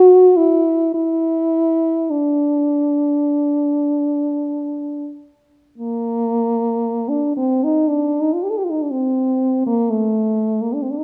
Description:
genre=classical, free, expressive piece for unaccompanied French horn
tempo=40-63 BPM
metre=4/4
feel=rubato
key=unclear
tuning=A4 = 439 Hz
part: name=mellow French horn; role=solo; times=0.0-11.0 s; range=A3 to A4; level=-18 LUFS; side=equal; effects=none
room=wet recital hall reverb, RT60 1.7 s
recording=dark, warm production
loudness=-18 LUFS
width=mono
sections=0.0-5.8 A section; 5.8-11.0 B section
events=none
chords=none

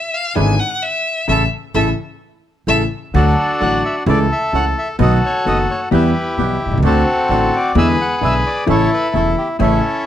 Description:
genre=tango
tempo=130 BPM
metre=4/4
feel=rubato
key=D major from 3.1 s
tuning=A4 = 440 Hz
part: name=clear violin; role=second line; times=0.0-2.8 s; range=E5 to G#5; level=-18 LUFS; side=left 2 dB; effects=none
part: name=bandoneon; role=stabs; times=0.3-9.8 s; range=G#3 to A4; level=-26 LUFS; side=right 8 dB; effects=none
part: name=clear grand piano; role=accompaniment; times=0.4-9.8 s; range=E1 to G4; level=-19 LUFS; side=left 4 dB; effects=none
part: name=upright bass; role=bass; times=0.4-9.8 s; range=E1 to E2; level=-18 LUFS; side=right 2 dB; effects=none
part: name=breathy bright concert flute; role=second line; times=1.3-2.8 s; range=A4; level=-23 LUFS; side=right 6 dB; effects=none
part: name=bandoneon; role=melody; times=3.2-10.1 s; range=C4 to F#5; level=-17 LUFS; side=left 1 dB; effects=none
room=light reverb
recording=close, detailed microphones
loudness=-14 LUFS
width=side -11 dB against mid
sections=0.0-3.1 A section; 3.1-10.1 B section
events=violin solo 0.0-3.1; band accent 1.3-3.1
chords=0.4 E7/G#; 1.3 A; 3.1 D; 4.1 A/C#; 5.0 B7; 5.9 Em; 6.8 D7; 7.8 E7; 8.7 A

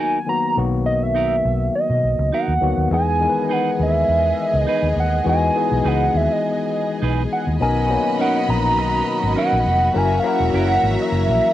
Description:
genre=soul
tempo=102 BPM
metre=4/4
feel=swing 54% on 16ths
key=unclear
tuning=A4 = 441 Hz
part: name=hollow square lead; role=melody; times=0.0-11.5 s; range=D#5 to A#5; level=-20 LUFS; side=right 2 dB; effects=chorus, cassette tape
part: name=barky tine electric piano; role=accompaniment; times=0.0-11.5 s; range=D#3 to B4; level=-23 LUFS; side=left 6 dB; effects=overdrive, cassette tape
part: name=clean electric guitar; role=riff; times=0.0-10.7 s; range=C#4 to B4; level=-26 LUFS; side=right 7 dB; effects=cassette tape
part: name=vintage muted fingered electric bass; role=bass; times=0.6-11.4 s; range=E1 to B2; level=-21 LUFS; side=equal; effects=none
part: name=rich studio string section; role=second line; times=2.9-11.5 s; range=B3 to B5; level=-28 LUFS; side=equal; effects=cassette tape
part: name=string machine, violins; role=sustained chords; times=7.6-11.5 s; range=B2 to F#4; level=-28 LUFS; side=right 1 dB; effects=ensemble chorus, cassette tape
room=light reverb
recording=home recording on cassette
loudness=-16 LUFS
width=side -13 dB against mid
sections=0.0-2.9 A section; 2.9-11.5 B section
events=none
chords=0.0 Bmaj7; 2.9 Emaj7; 7.6 Bmaj9; 9.9 F#7

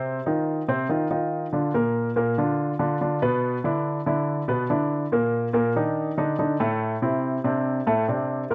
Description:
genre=jazz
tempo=142 BPM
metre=4/4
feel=straight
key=Bb major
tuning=A4 = 440 Hz
part: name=warm grand piano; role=solo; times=0.0-8.5 s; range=A2 to B#4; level=-24 LUFS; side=equal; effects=none
room=studio reverb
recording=dry, close 1970s-style studio recording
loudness=-24 LUFS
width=mono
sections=0.0-1.7 A section; 1.7-8.5 B section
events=none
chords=0.0 F5; 1.7 Bb; 3.4 E5; 5.1 Eb5; 6.8 Amadd11; 7.7 D5

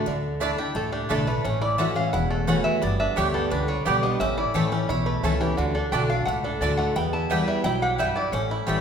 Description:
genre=bluegrass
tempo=174 BPM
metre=4/4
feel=straight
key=D major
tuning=A4 = 436 Hz
part: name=picked steel-string acoustic guitar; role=accompaniment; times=0.0-8.8 s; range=E2 to G4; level=-26 LUFS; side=left 2 dB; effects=none
part: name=bluegrass banjo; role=arpeggios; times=0.0-8.8 s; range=D3 to G4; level=-30 LUFS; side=right 2 dB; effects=none
part: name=upright bass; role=bass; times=0.1-8.8 s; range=E1 to E2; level=-30 LUFS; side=equal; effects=none
part: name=mandolin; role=stabs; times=0.4-8.8 s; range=A3 to A5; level=-31 LUFS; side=right 4 dB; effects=none
part: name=lap resonator guitar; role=melody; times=0.8-8.8 s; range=E4 to A5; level=-28 LUFS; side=right 1 dB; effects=none
room=wet recital hall reverb, RT60 1.6 s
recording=recorded in a church or concert hall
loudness=-22 LUFS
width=side -7 dB against mid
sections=0.1-8.8 A section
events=none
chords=0.1 Dsus2; 1.4 A6; 2.8 G; 4.2 A; 5.6 D; 7.0 Em

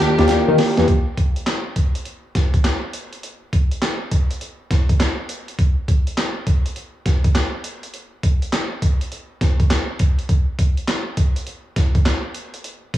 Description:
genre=R&B, new jack swing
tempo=102 BPM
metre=4/4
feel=swing 64% on 16ths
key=unclear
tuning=A4 = 441 Hz
part: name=warm analog keys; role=accompaniment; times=0.0-0.9 s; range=Bb3 to G4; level=-18 LUFS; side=equal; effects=chorus
part: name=warm studio string section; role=sustained chords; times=0.0-0.9 s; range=Eb3 to G4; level=-22 LUFS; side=equal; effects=none
part: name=fat analog bass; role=bass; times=0.0-0.9 s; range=Eb2 to Eb3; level=-16 LUFS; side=left 2 dB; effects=none
part: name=breakbeat sampler-style drum kit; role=drums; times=0.0-13.0 s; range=handclaps, hi-hat, kick drum, snare drum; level=-18 LUFS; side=equal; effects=cassette tape
part: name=group handclap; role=percussion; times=0.3-0.5 s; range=none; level=-38 LUFS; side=right 8 dB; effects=none
room=light reverb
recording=home recording on cassette, small room ambience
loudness=-17 LUFS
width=side -13 dB against mid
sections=0.9-13.0 A section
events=drum fill 0.0-0.9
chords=0.0 Ebmaj7; 0.9 N.C.

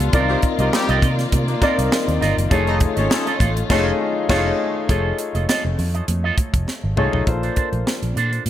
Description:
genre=polished 1980s jazz-funk pop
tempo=101 BPM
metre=4/4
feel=swing 54% on 16ths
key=unclear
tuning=A4 = 438 Hz
part: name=clear grand piano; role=accompaniment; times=0.0-8.5 s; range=A3 to D5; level=-22 LUFS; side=left 3 dB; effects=analog chorus
part: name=dark studio string section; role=sustained chords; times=0.0-4.9 s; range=Eb3 to D5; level=-28 LUFS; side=left 2 dB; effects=none
part: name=electric guitar with an envelope filter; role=riff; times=0.0-8.5 s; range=D4 to Eb5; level=-26 LUFS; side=right 7 dB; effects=wide subtle chorus
part: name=vintage muted fingered electric bass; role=bass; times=0.0-8.5 s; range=F1 to C3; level=-21 LUFS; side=equal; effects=none
part: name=tight funk drum kit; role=drums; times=0.0-8.5 s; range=crash cymbal, hi-hat, kick drum, snare drum, toms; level=-22 LUFS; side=equal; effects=gated reverb
part: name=congas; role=percussion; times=0.1-8.5 s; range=none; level=-35 LUFS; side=right 4 dB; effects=none
part: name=mellow horn section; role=second line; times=0.3-4.4 s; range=G3 to Eb5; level=-27 LUFS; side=left 3 dB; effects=none
room=light reverb, small room ambience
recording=none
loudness=-17 LUFS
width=side -12 dB against mid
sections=0.0-4.9 A section; 4.9-7.3 B section; 7.3-8.5 C section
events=band accent 3.7-4.9; drum fill 6.7-7.3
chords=0.1 Cm11; 2.5 F7alt; 7.3 Bbmaj9

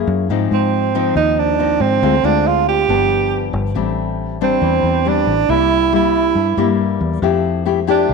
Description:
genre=bossa nova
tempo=138 BPM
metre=4/4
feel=straight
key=A minor from 3.8 s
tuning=A4 = 440 Hz
part: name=nylon-string guitar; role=accompaniment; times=0.0-8.1 s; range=G2 to G#4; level=-19 LUFS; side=left 12 dB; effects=none
part: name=fingered electric bass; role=bass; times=0.0-8.1 s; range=G1 to Ab2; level=-20 LUFS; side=left 1 dB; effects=none
part: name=breathy tenor saxophone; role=melody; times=0.5-8.1 s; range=C4 to G4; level=-16 LUFS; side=right 9 dB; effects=none
room=moderate echo chamber reverb, RT60 1.5 s, small room ambience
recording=1960s-style stereo with parts hard left and right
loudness=-14 LUFS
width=side -4 dB against mid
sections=0.0-3.8 A section; 3.8-8.1 B section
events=none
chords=0.3 Ab6; 2.0 Dm7b5; 2.9 G7; 3.8 Am7; 5.5 C7; 7.2 Fmaj9

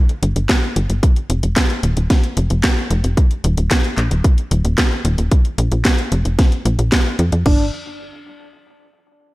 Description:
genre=italo disco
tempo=112 BPM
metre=4/4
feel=straight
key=G minor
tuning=A4 = 440 Hz
part: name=house drum kit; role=drums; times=0.1-7.6 s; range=crash cymbal, handclaps, hi-hat, snare drum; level=-20 LUFS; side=equal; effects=gated reverb
part: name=tight sequencer bass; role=bass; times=0.2-7.7 s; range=Eb1 to F2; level=-17 LUFS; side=equal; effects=none
part: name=electronic kick drum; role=drums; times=0.5-7.6 s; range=none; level=-14 LUFS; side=equal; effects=none
part: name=wide unison lead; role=melody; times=7.5-7.7 s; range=D4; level=-23 LUFS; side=right 1 dB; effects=tape echo
room=little or no reverb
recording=none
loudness=-14 LUFS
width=side -19 dB against mid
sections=0.0-7.5 A section; 7.5-9.3 B section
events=none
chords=0.0 G5; 1.0 Ebsus2; 3.2 Eb5; 5.3 Bb5; 7.5 G5

